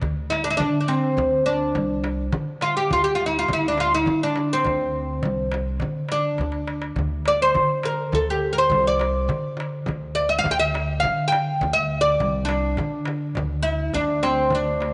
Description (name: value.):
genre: Arabic maqam ensemble.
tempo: 103 BPM.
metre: 3/4.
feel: straight.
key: D maqam bayati.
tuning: A4 = 440 Hz.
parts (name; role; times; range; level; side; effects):
upright bass; bass; 0.0-14.9 s; C2 to D3; -30 LUFS; equal; none.
darbuka; percussion; 0.0-14.9 s; none; -35 LUFS; equal; none.
frame drum; percussion; 0.0-14.9 s; none; -34 LUFS; equal; none.
oud; melody; 0.3-14.9 s; C4 to G5; -24 LUFS; equal; none.
muted cello; drone; 14.0-14.9 s; D2; -37 LUFS; equal; none.
room: moderate plate reverb, RT60 2.4 s.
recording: nothing above 10.6 kHz.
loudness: -22 LUFS.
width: mono.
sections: 0.0-13.9 A section; 13.9-14.9 B section.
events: drum fill 6.4-7.0.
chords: none.